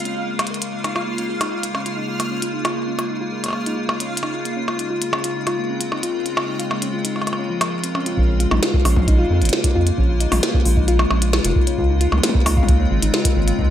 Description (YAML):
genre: IDM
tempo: 133 BPM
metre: 4/4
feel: straight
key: Bb minor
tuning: A4 = 439 Hz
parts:
  - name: icy glass pad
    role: sustained chords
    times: 0.0-13.7 s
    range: Db3 to F4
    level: -25 LUFS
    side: left 2 dB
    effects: chorus, built-in reverb
  - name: harp-like synth pluck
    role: arpeggios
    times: 0.0-13.7 s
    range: F3 to Bb4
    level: -25 LUFS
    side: left 1 dB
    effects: chorus, digital delay
  - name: glitchy drum kit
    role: drums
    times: 0.0-13.6 s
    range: hi-hat, percussion blips, snare drum, toms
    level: -23 LUFS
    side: equal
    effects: overdrive, gated reverb, digital delay
  - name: backwards swelling texture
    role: texture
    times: 0.0-8.2 s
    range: F5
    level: -34 LUFS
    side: right 1 dB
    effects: built-in reverb, ensemble chorus
  - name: round analog bass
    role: bass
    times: 8.2-13.7 s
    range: F1 to F2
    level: -18 LUFS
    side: equal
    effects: tube saturation
  - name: electronic kick drum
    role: drums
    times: 8.2-13.7 s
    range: none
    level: -19 LUFS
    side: equal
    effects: overdrive
room: moderate plate reverb, RT60 1.2 s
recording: bright 1980s-style digital production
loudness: -17 LUFS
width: side -11 dB against mid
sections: 0.0-8.2 A section; 8.2-13.7 B section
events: none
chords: 0.0 Db; 4.6 Dbmaj7; 8.2 Bbm7; 11.8 Dbmaj7